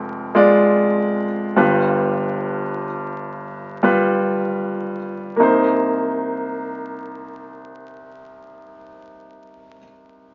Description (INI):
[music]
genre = folk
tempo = free time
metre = none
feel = none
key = C minor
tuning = A4 = 440 Hz
[part]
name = bright grand piano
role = accompaniment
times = 0.0-10.3 s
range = F1 to D5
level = -20 LUFS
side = equal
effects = none
[sound]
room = wet studio reverb, RT60 0.9 s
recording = very old 78 rpm record, vinyl crackle, nothing above 7.5 kHz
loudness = -19 LUFS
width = mono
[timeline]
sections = 0.0-5.4 A section; 5.4-9.8 B section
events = slowing down 0.0-5.4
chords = 0.0 Ddim/F; 1.6 G7; 5.4 Cm7